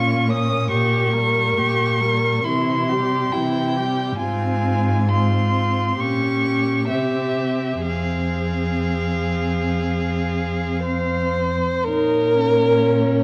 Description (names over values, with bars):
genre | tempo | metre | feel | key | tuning
classical, slow romantic movement for string quartet | 59-72 BPM | 4/4 | rubato | F minor | A4 = 437 Hz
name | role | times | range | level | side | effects
rich violin | melody | 0.0-13.2 s | Db5 to Eb6 | -27 LUFS | equal | none
dark violin | second line | 0.0-13.2 s | Db4 to C5 | -26 LUFS | equal | none
rich viola | accompaniment | 0.0-13.2 s | E3 to Eb4 | -29 LUFS | equal | none
warm cello | bass | 0.0-13.2 s | F2 to C3 | -25 LUFS | equal | none
room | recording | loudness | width
moderate concert hall reverb, RT60 2.0 s | dark, warm production, vinyl crackle | -20 LUFS | mono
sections
0.0-11.9 A section; 11.9-13.2 B section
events
none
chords
0.0 Bbm; 0.7 Gdim/Bb; 2.5 C; 4.2 Fm/Ab; 6.0 Gdim/Bb; 6.9 C; 7.9 Fm; 11.9 Bbm